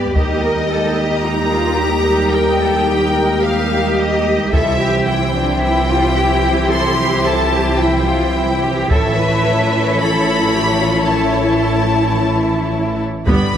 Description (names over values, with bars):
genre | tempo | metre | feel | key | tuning
cinematic, epic orchestral film score | 110 BPM | 4/4 | straight | unclear | A4 = 441 Hz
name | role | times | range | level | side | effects
rich symphonic violin section | melody | 0.0-13.6 s | D5 to C6 | -20 LUFS | left 2 dB | none
warm symphonic violin section | second line | 0.0-13.6 s | G4 to D5 | -23 LUFS | left 2 dB | none
rich symphonic viola section | accompaniment | 0.0-13.6 s | E3 to E4 | -21 LUFS | right 2 dB | none
mellow French horn section | sustained chords | 0.0-13.6 s | Bb3 to G4 | -22 LUFS | left 4 dB | none
rich chamber double bass section | bass | 0.0-13.6 s | G1 to G2 | -21 LUFS | right 3 dB | none
warm symphonic cello section | bass | 0.0-13.6 s | G2 to B4 | -21 LUFS | right 2 dB | none
taiko ensemble | drums | 0.2-1.2, 4.5-5.6, 8.9-10.0, 13.3-13.6 s | none | -19 LUFS | equal | none
mellow tuba | bass | 13.3-13.6 s | G1 | -20 LUFS | right 3 dB | none
room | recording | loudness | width
moderate scoring stage reverb, RT60 2.0 s | none | -13 LUFS | side -9 dB against mid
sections
0.0-13.3 A section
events
none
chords
0.2 Eb; 4.5 C; 8.9 A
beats
| 0.15 0.70 1.25 1.79 | 2.34 2.89 3.43 3.98 | 4.53 5.08 5.62 6.17 | 6.72 7.26 7.81 8.36 | 8.91 9.45 10.00 10.55 | 11.09 11.64 12.19 12.73 | 13.28